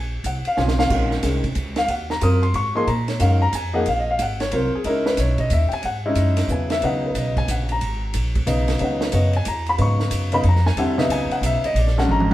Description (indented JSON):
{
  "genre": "modal jazz",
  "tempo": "182 BPM",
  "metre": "3/4",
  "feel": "swing 64% on 8ths",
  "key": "Eb dorian, C# dorian from 4.9 s",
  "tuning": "A4 = 440 Hz",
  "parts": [
    { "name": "dark grand piano", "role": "accompaniment", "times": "0.0-12.3 s", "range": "Db3 to Eb6", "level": "-21 LUFS", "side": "left 1 dB", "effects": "none" },
    { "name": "upright bass", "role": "bass", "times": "0.0-12.3 s", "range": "Ab1 to Bb2", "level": "-21 LUFS", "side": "equal", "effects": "none" },
    { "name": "compact cocktail drum kit", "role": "drums", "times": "0.2-12.3 s", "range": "crash cymbal, hi-hat, kick drum, ride cymbal, snare drum, toms", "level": "-28 LUFS", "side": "right 2 dB", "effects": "none" }
  ],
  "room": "moderate stone room reverb, RT60 0.9 s",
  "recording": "band playing live in one room",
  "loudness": "-18 LUFS",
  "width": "side -14 dB against mid",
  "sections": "0.0-4.9 A section; 4.9-12.3 A section",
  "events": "drum fill 0.6-0.9, 12.1",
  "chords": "0.0 Ebm11; 4.9 C#m11; 11.8 A#7alt"
}